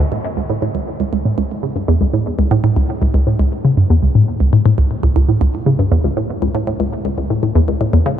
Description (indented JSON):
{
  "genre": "ambient",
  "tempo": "119 BPM",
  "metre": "4/4",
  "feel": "straight",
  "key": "unclear",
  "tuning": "A4 = 440 Hz",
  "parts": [
    { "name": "hollow square pluck", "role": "solo", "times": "0.0-8.2 s", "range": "C#2 to C#3", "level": "-13 LUFS", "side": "equal", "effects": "chorus, phaser, tape echo" }
  ],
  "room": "moderate huge ambient reverb, RT60 8.6 s",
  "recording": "none",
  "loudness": "-14 LUFS",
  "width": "side -10 dB against mid",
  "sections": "0.0-8.2 A section",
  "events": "none",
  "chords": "none"
}